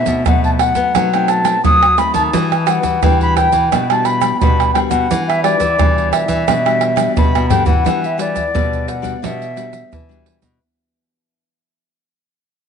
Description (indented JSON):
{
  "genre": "samba and choro",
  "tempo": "87 BPM",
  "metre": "4/4",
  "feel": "straight",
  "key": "E minor",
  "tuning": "A4 = 439 Hz",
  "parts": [
    { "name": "baroque flute", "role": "melody", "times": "0.0-10.2 s", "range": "D5 to D#6", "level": "-16 LUFS", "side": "left 1 dB", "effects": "none" },
    { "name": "nylon-string guitar", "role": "accompaniment", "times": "0.0-10.6 s", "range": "B2 to F#4", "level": "-22 LUFS", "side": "left 14 dB", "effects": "none" },
    { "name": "nylon-string guitar", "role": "bass", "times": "0.0-10.6 s", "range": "B2 to B3", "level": "-21 LUFS", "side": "left 1 dB", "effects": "none" },
    { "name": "egg shaker, surdo, pandeiro and tamborim", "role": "percussion", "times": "0.1-10.6 s", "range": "none", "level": "-17 LUFS", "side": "right 4 dB", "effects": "none" }
  ],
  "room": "moderate plate reverb, RT60 3.4 s",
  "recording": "1960s-style stereo, nothing above 10.5 kHz",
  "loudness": "-12 LUFS",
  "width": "side -7 dB against mid",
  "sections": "0.0-7.9 A section; 7.9-10.6 B section",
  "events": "drum fill 7.3-7.9; fade-out 7.9-10.6",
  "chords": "0.0 B7b9; 2.3 Em9",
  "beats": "0.28 0.97 1.66 | 2.35 3.03 3.72 4.41 | 5.10 5.79 6.48 7.17 | 7.86 8.55 9.24 9.93"
}